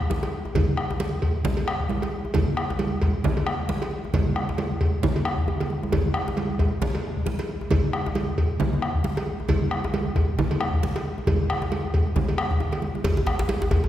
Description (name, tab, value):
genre	west african traditional, West African drum ensemble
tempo	134 BPM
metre	4/4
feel	swing 57% on 16ths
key	none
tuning	none
part	bombo	percussion	0.0-13.8 s	none	-26 LUFS	left 1 dB	none
part	congas	percussion	0.1-13.6 s	none	-27 LUFS	right 2 dB	none
part	djembe	percussion	0.1-13.9 s	none	-30 LUFS	left 2 dB	none
part	cowbell	percussion	0.2-13.8 s	none	-32 LUFS	right 1 dB	none
part	djembe	percussion	13.0-13.9 s	none	-26 LUFS	equal	none
room	wet concert hall reverb, RT60 2.4 s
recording	heard from further back in the room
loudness	-22 LUFS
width	side -12 dB against mid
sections	0.0-13.0 A section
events	drum fill 5.5-5.9, 12.5-13.0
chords	none